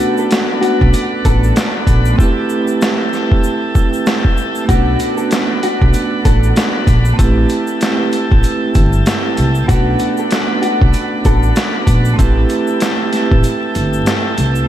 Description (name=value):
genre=hip hop, boom-bap hip-hop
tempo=96 BPM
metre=4/4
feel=swing 59% on 16ths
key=unclear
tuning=A4 = 443 Hz
part: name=mellow electric guitar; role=melody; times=0.0-11.5 s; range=F#4 to A4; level=-23 LUFS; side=left 4 dB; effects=lush chorus, high-pass filter, low-pass filter, ping-pong delay
part: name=vibraphone with soft mallets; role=accompaniment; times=0.0-14.7 s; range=A3 to B4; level=-18 LUFS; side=right 3 dB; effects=high-pass filter, low-pass filter
part: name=tonewheel organ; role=sustained chords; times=0.0-14.7 s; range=A4 to B5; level=-22 LUFS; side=left 1 dB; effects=slow rotary speaker, high-pass filter, low-pass filter
part: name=tube shaker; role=percussion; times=0.2-14.7 s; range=none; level=-36 LUFS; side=left 6 dB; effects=none
part: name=boom bap sampler-style drum kit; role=drums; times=0.3-14.5 s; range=hi-hat, kick drum, snare drum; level=-16 LUFS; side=equal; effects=none
part: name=upright bass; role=bass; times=0.8-14.6 s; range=G1 to C2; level=-14 LUFS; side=equal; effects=none
room=light reverb, studio ambience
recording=vinyl crackle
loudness=-12 LUFS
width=side -12 dB against mid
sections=0.0-14.7 A section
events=hi-hats muted 2.2-4.7; kick muted 13.4-14.7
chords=0.0 Bm7; 2.2 Am7; 4.7 Bm7; 7.2 Am7; 9.7 Bm7; 12.2 Am7